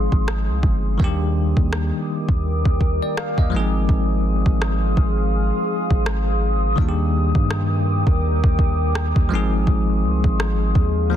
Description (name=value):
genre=contemporary R&B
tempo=83 BPM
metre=4/4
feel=swing 58% on 16ths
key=unclear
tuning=A4 = 444 Hz
part: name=bell-like tine electric piano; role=accompaniment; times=0.0-11.2 s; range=Eb3 to F5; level=-24 LUFS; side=left 2 dB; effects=fast stereo tremolo
part: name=deep dark ambient pad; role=sustained chords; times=0.0-11.2 s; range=G4 to Eb6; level=-26 LUFS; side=left 1 dB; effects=chorus, built-in reverb
part: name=long sustained 808-style bass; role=bass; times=0.0-11.2 s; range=G1 to G2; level=-21 LUFS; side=equal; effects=none
part: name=smooth R&B drum kit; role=drums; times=0.1-10.9 s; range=kick drum, rim click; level=-20 LUFS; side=equal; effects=none
room=little or no reverb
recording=dense, heavily limited modern master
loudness=-17 LUFS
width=side -10 dB against mid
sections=0.0-11.2 A section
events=none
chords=0.0 Ab6; 1.0 Ebmaj7; 3.5 Ab6; 6.8 Ebmaj7; 9.3 Ab6